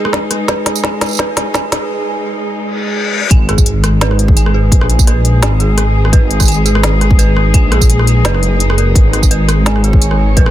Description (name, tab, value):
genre	half-time drum and bass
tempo	170 BPM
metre	4/4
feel	swing 54% on 16ths, half-time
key	G# minor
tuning	A4 = 440 Hz
part	muted symphonic cello section	sustained chords	0.0-10.5 s	G#3 to C#5	-20 LUFS	left 2 dB	vintage 12-bit sampler grit, sidechain pumping
part	dark detuned synth bell	arpeggios	0.0-10.5 s	G#4 to G#5	-21 LUFS	right 4 dB	chorus, phaser, low-pass filter, digital delay
part	electronic kick drum	drums	0.1-10.4 s	none	-10 LUFS	equal	high-pass filter on kick
part	organic electronic drum kit	drums	0.1-10.5 s	hi-hat, rim click, snare drum, tambourine	-18 LUFS	equal	soft clipping on snare
part	reverse cymbal and sub drop	sound effects	2.7-4.7 s	none	-20 LUFS	left 4 dB	none
part	dark detuned saw bass	bass	3.3-10.5 s	F#1 to A#1	-12 LUFS	equal	none
room	digital ambience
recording	dense, heavily limited modern master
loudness	-9 LUFS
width	side -13 dB against mid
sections	0.0-3.3 A section; 3.3-10.5 B section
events	build-up 0.0-3.3; drum fill 0.0-1.9; filter sweep on synth bell 0.0-3.3; break 1.9-3.3; reverse cymbal 2.7-3.3; drop 3.3-10.5; impact 3.3-4.7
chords	0.0 G#5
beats	0.13 | 0.48 0.84 1.19 1.54 | 1.90 2.25 2.60 2.96 | 3.31 3.66 4.01 4.37 | 4.72 5.07 5.43 5.78 | 6.13 6.49 6.84 7.19 | 7.54 7.90 8.25 8.60 | 8.96 9.31 9.66 10.02 | 10.37